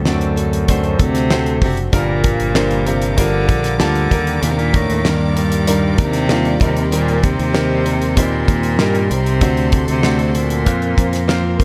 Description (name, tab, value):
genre	piano-driven pop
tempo	96 BPM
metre	4/4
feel	straight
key	unclear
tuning	A4 = 439 Hz
part	rich cello	melody	0.0-11.6 s	F#2 to D3	-22 LUFS	equal	none
part	clear baby grand piano	accompaniment	0.0-11.6 s	G2 to A5	-25 LUFS	equal	none
part	fingerpicked plugged-in steel-string acoustic guitar	riff	0.0-11.6 s	G2 to Bb4	-25 LUFS	equal	none
part	fingered electric bass	bass	0.0-11.6 s	F1 to G2	-22 LUFS	equal	none
part	damped 70s drum kit	drums	0.1-11.6 s	hi-hat, kick drum, snare drum	-20 LUFS	equal	none
part	warm studio string section	sustained chords	1.9-11.6 s	A4 to D6	-32 LUFS	equal	none
room	light reverb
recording	none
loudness	-16 LUFS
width	mono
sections	0.0-11.6 A section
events	none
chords	0.0 D7; 1.9 Gm7; 4.1 Ebmaj7; 6.6 Cm7/Eb; 9.4 D7; 10.7 Fsus4